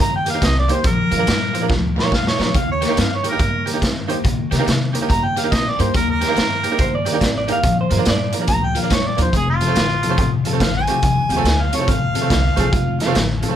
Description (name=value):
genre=electric blues shuffle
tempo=141 BPM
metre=4/4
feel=swing 64% on 8ths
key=unclear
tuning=A4 = 439 Hz
part: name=mellow harmonica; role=melody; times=0.0-13.1 s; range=F4 to Bb5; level=-22 LUFS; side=right 1 dB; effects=overdrive
part: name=cranked stack guitar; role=riff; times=0.0-13.6 s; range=F2 to C4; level=-23 LUFS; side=left 6 dB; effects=overdrive, phaser
part: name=upright bass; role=bass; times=0.0-13.4 s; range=F1 to C3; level=-22 LUFS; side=equal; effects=none
part: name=tack piano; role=accompaniment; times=0.3-13.6 s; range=A3 to C5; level=-24 LUFS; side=right 7 dB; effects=none
part: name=raw garage drum kit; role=drums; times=0.3-13.5 s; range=hi-hat, kick drum, snare drum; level=-20 LUFS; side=right 1 dB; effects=none
part: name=electric guitar through a small old amp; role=second line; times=6.8-8.3, 12.6-13.2 s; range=F4 to F5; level=-22 LUFS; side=right 3 dB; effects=none
room=light reverb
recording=none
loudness=-15 LUFS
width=side -10 dB against mid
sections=0.0-13.6 A section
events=drum fill 1.7-2.5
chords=0.0 Eb; 0.8 Bb; 2.5 Eb; 7.6 Bb; 9.3 F